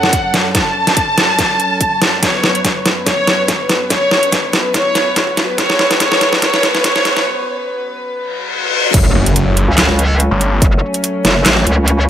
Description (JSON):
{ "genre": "heavy wobble dubstep", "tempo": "143 BPM", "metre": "4/4", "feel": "swing 55% on 16ths, half-time", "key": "F# minor", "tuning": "A4 = 443 Hz", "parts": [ { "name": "warm symphonic violin section", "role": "melody", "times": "0.0-7.2 s", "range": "C#5 to A5", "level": "-16 LUFS", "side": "equal", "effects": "low-pass filter, digital delay" }, { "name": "dark studio string section", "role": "sustained chords", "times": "0.0-12.1 s", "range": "F#2 to B4", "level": "-22 LUFS", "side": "equal", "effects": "sidechain pumping, low-pass filter" }, { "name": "dubstep drum kit", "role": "drums", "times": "0.0-12.0 s", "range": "crash cymbal, handclaps, hi-hat, snare drum", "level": "-14 LUFS", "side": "equal", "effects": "none" }, { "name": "electronic kick drum", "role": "drums", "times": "0.1-10.7 s", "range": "none", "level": "-18 LUFS", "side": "equal", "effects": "none" }, { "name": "riser, reverse cymbal and impact", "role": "sound effects", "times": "4.0-10.6 s", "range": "none", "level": "-21 LUFS", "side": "left 1 dB", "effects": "none" }, { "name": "metallic wobble bass", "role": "bass", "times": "8.9-12.1 s", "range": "F#1 to C#2", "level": "-13 LUFS", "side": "equal", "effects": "chorus, overdrive" }, { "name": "snarling distorted saw bass", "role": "bass", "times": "9.1-10.6 s", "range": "F#1 to G1", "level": "-13 LUFS", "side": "equal", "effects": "distortion, overdrive" } ], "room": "moderate digital room reverb, RT60 1.1 s", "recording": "high-pass filter", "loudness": "-11 LUFS", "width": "side -10 dB against mid", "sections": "0.0-8.9 A section; 8.9-12.1 B section", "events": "build-up 0.0-8.9; drum fill 0.0-7.3; break 7.3-8.9; reverse cymbal 8.3-8.9; drop 8.9-12.1; impact 8.9-10.6", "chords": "0.0 F#m" }